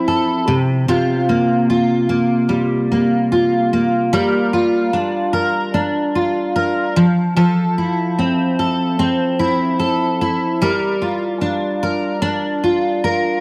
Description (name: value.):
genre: indie pop.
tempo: 74 BPM.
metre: 4/4.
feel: swing 55% on 16ths.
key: unclear.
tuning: A4 = 440 Hz.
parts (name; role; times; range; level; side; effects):
fingerpicked steel-string acoustic guitar; solo; 0.0-13.4 s; C3 to Bb4; -17 LUFS; equal; analog chorus, vibrato effect.
room: light reverb, small room ambience.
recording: none.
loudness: -17 LUFS.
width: mono.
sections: 0.0-4.1 A section; 4.1-13.4 B section.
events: none.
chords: 0.5 C7sus4; 4.1 Gm7; 7.0 Fmaj7; 10.6 Gm7.